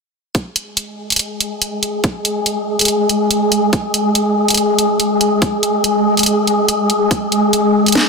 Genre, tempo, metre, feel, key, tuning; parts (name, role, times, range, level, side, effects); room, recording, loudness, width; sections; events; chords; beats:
deep dubstep; 142 BPM; 4/4; swing 57% on 16ths, half-time; A4 = 440 Hz
electronic kick drum; drums; 0.3-7.2 s; -17 LUFS; equal; high-pass filter on kick, small room ambience
garage drum kit; drums; 0.3-8.1 s; hi-hat, snare drum; -17 LUFS; right 1 dB; small room ambience
wind-like tuned noise texture; texture; 1.0-8.1 s; G#3 to G#4; -15 LUFS; left 1 dB; built-in reverb
moderate huge ambient reverb, RT60 4.0 s; dense, heavily limited modern master; -13 LUFS; side -4 dB against mid
0.3-8.1 A section
| 0.35 0.77 1.19 1.62 | 2.04 2.46 2.88 3.31 | 3.73 4.15 4.57 5.00 | 5.42 5.84 6.26 6.69 | 7.11 7.53 7.95